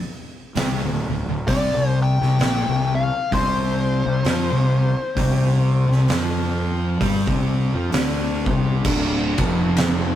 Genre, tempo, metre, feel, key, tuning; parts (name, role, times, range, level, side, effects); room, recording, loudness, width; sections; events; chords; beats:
stoner and doom metal; 65 BPM; 4/4; swing 58% on 8ths; A4 = 440 Hz
thick fuzz guitar; riff; 0.6-10.2 s; D2 to G4; -22 LUFS; left 3 dB; distortion
thick fuzz guitar; riff; 0.6-10.2 s; D2 to G4; -27 LUFS; right 6 dB; distortion
fuzz fingered electric bass; bass; 0.6-10.2 s; D1 to G2; -25 LUFS; equal; overdrive
oversized low-tuned drum kit; drums; 0.6-10.0 s; crash cymbal, hi-hat, kick drum, ride cymbal, snare drum; -24 LUFS; right 1 dB
fuzz lead guitar; melody; 1.5-7.9 s; C5 to G5; -25 LUFS; left 3 dB; wah, distortion
moderate studio ambience, RT60 0.5 s; rough rehearsal-room recording, tube saturation; -18 LUFS; side -11 dB against mid
0.0-8.9 A section; 8.9-10.2 B section
0.0 N.C.; 1.5 C5; 8.9 Dm
0.56 | 1.48 2.40 3.33 4.25 | 5.17 6.10 7.02 7.94 | 8.86 9.79